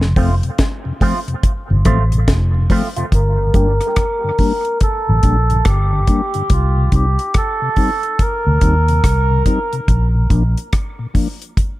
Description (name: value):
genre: dub reggae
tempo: 71 BPM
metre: 4/4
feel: swing 63% on 16ths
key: G minor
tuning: A4 = 440 Hz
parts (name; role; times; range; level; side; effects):
- mellow tonewheel organ; accompaniment; 0.0-11.3 s; F2 to Eb4; -22 LUFS; left 3 dB; slow rotary speaker, low-pass filter
- vintage muted fingered electric bass; bass; 0.0-10.5 s; F1 to Eb2; -14 LUFS; equal; none
- deep reggae drum kit; drums; 0.0-11.8 s; hi-hat, kick drum, rim click, snare drum; -16 LUFS; equal; none
- electric guitar with an envelope filter; accompaniment; 0.2-3.7 s; F3 to G4; -25 LUFS; right 3 dB; phaser, low-pass filter, dub echo
- melodica; melody; 3.1-9.4 s; F4 to Bb4; -20 LUFS; right 1 dB; low-pass filter, dub echo
room: light reverb, small room reverb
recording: echo-heavy mix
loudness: -13 LUFS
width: side -17 dB against mid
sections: 0.0-3.1 A section; 3.1-11.8 B section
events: filter sweep 3.1-11.8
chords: 0.0 F; 3.1 Gm; 6.5 Cm; 9.9 Bb